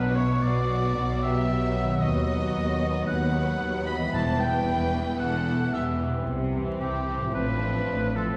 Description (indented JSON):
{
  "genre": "classical, dramatic, fast romantic movement for symphony orchestra",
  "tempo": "113 BPM",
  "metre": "4/4",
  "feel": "straight",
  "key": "E minor",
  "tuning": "A4 = 440 Hz",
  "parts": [
    { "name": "warm symphonic violin section", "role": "melody", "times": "0.0-8.4 s", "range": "C4 to D#5", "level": "-40 LUFS", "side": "equal", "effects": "none" },
    { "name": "warm oboe", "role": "second line", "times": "0.0-8.4 s", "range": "G4 to B5", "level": "-33 LUFS", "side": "equal", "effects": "none" },
    { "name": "warm symphonic violin section", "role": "second line", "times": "0.0-8.2 s", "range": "G4 to B5", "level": "-39 LUFS", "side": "equal", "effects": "none" },
    { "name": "warm symphonic viola section", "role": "accompaniment", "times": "0.0-8.4 s", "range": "E3 to C4", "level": "-37 LUFS", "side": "equal", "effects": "none" },
    { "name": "warm French horn section", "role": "sustained chords", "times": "0.0-8.4 s", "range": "E3 to C4", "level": "-35 LUFS", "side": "equal", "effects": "none" },
    { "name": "concert harp", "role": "arpeggios", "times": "0.0-8.4 s", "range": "A2 to C5", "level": "-36 LUFS", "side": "equal", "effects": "none" },
    { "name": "clear symphonic double bass section", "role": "bass", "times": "0.0-8.4 s", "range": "E1 to D#2", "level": "-34 LUFS", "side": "equal", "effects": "none" },
    { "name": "rich symphonic cello section", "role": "bass", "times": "0.0-8.4 s", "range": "D#2 to C3", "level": "-32 LUFS", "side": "equal", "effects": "none" },
    { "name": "timpani", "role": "percussion", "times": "4.1-4.9 s", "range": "E2", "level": "-39 LUFS", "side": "equal", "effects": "none" }
  ],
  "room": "wet concert hall reverb, RT60 1.9 s",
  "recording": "heard from further back in the room, vinyl crackle",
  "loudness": "-26 LUFS",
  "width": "mono",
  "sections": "0.0-8.4 A section",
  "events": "none",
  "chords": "0.0 Bm; 2.0 B/D#; 4.1 Em; 6.3 C; 7.3 F/A"
}